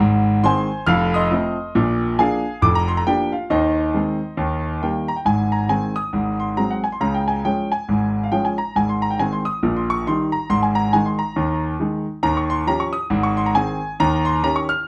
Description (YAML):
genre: jazz, stride piano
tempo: 137 BPM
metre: 4/4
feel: swing 60% on 8ths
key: Ab major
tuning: A4 = 440 Hz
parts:
  - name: clear grand piano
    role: solo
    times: 0.0-14.9 s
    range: F1 to F6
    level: -20 LUFS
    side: equal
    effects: none
room: moderate studio ambience, RT60 0.5 s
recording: dark, warm production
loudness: -20 LUFS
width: mono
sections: 0.0-5.3 A section; 5.3-14.9 B section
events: none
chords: 0.0 Ab; 0.9 F7; 1.7 Bb7; 3.5 Ab/Eb; 4.4 Eb; 5.3 Ab; 6.1 Ab7; 7.0 Db; 8.7 Ab; 9.6 Eb/Bb; 10.5 Ab5; 12.2 Eb9; 13.1 Ab; 14.0 Eb7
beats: 0.42 0.86 1.30 | 1.74 2.18 2.62 3.06 | 3.50 3.94 4.38 4.82 | 5.25 5.69 6.13 6.57 | 7.00 7.44 7.88 8.31 | 8.75 9.18 9.62 10.06 | 10.49 10.93 11.37 11.80 | 12.24 12.67 13.11 13.55 | 13.98 14.42 14.86